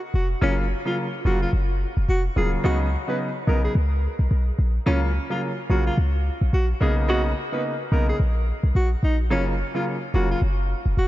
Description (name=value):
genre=afrobeats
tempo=108 BPM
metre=4/4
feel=swing 58% on 16ths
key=F# major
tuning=A4 = 441 Hz
part: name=warm 808-style bass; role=bass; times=0.1-11.1 s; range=D#1 to C#2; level=-21 LUFS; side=equal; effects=none
part: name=breathy alto saxophone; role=melody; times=0.2-11.1 s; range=C#4 to B4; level=-28 LUFS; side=equal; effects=analog delay
part: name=warm grand piano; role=accompaniment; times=0.4-10.4 s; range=C#3 to E#4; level=-27 LUFS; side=equal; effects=none
room=light reverb, small room ambience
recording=nothing above 7.5 kHz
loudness=-20 LUFS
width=side -15 dB against mid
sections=0.4-11.1 A section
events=none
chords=0.4 F#maj7; 2.6 C#9sus4; 4.9 F#maj7; 6.8 Bmaj9; 9.3 F#maj7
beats=| 0.42 0.97 1.53 2.08 | 2.64 3.20 3.75 4.31 | 4.86 5.42 5.97 6.53 | 7.08 7.64 8.20 8.75 | 9.31 9.86 10.42 10.97